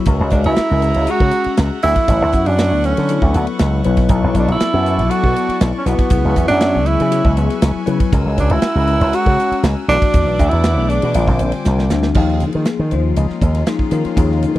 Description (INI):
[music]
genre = electric jazz fusion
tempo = 119 BPM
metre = 4/4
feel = straight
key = B dorian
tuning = A4 = 440 Hz
[part]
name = bell-like tine electric piano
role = accompaniment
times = 0.0-14.6 s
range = D3 to F#5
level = -21 LUFS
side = left 8 dB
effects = phaser
[part]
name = warm chamber string section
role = sustained chords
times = 0.0-14.6 s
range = Eb3 to E6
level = -29 LUFS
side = equal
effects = none
[part]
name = slap bass with an envelope filter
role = bass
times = 0.1-14.6 s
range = A1 to Eb3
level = -16 LUFS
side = equal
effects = none
[part]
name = tight funk drum kit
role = drums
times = 0.1-14.6 s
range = crash cymbal, hi-hat, kick drum, ride cymbal, snare drum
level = -18 LUFS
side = equal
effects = none
[part]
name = breathy tenor saxophone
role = melody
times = 0.3-11.4 s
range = B3 to F#4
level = -18 LUFS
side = right 2 dB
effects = none
[sound]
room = little or no reverb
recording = dry, close 1970s-style studio recording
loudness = -13 LUFS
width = side -15 dB against mid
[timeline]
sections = 0.0-12.2 A section; 12.2-14.6 B section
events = tine electric piano fill 3.3-4.1; drum fill 11.7-12.2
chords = 0.1 F#9/C#; 1.8 Dmaj13; 4.1 Bm9; 6.1 C#m7; 8.1 F#9/C#; 9.9 Bm7; 11.2 A#13; 12.2 Eb9sus4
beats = | 0.07 0.58 1.08 1.58 | 2.09 2.59 3.10 3.60 | 4.10 4.61 5.11 5.61 | 6.12 6.62 7.12 7.63 | 8.13 8.64 9.14 9.64 | 10.15 10.65 11.15 11.66 | 12.16 12.67 13.17 13.67 | 14.18